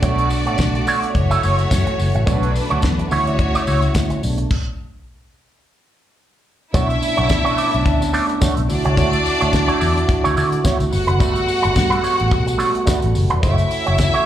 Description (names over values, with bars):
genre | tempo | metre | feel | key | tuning
disco | 108 BPM | 4/4 | swing 56% on 16ths | B minor | A4 = 441 Hz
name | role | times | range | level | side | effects
clear studio string section | second line | 0.0-14.3 s | F#3 to F#5 | -23 LUFS | left 1 dB | plate reverb, slapback echo
electric guitar with an envelope filter | accompaniment | 0.0-14.3 s | A3 to E5 | -22 LUFS | right 4 dB | wah, plate reverb, slapback echo
dark French horn section | sustained chords | 0.0-14.3 s | C#3 to F#4 | -24 LUFS | right 1 dB | plate reverb
vintage muted fingered electric bass | bass | 0.0-14.1 s | E1 to D3 | -19 LUFS | equal | none
damped 70s drum kit | drums | 0.0-14.3 s | crash cymbal, hi-hat, kick drum, snare drum | -21 LUFS | equal | none
tambourine | percussion | 0.0-14.1 s | none | -34 LUFS | left 3 dB | none
room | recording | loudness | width
light reverb | live gig heard through the venue's PA, club reverb | -15 LUFS | side -11 dB against mid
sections
0.0-6.7 A section; 6.7-14.3 B section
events
stop 4.5-6.7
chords
0.0 Bm9; 1.1 F#m7; 2.3 Bm9; 3.1 Dmaj9; 4.2 Bm9; 5.6 N.C.; 6.7 Bm9; 8.7 Dmaj9; 10.9 Gmaj9; 13.4 F#m7